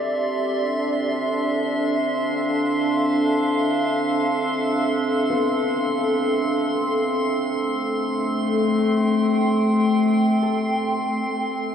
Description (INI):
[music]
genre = ambient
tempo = free time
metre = none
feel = none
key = D dorian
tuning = A4 = 440 Hz
[part]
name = warbly tape-like pad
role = sustained chords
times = 0.0-11.7 s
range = A3 to G5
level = -20 LUFS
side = equal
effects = chorus, built-in reverb
[part]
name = felt-muted upright piano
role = arpeggios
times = 0.0-11.7 s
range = B3 to A4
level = -39 LUFS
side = equal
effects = none
[part]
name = drifting glass-harmonics texture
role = texture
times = 0.0-11.7 s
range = C4 to C6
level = -26 LUFS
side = right 1 dB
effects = chorus, built-in reverb
[sound]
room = wet huge ambient reverb, RT60 8.1 s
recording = dark, warm production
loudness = -19 LUFS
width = side -8 dB against mid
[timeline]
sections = 0.0-11.7 A section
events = none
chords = 0.0 Dm7; 7.5 Am9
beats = free time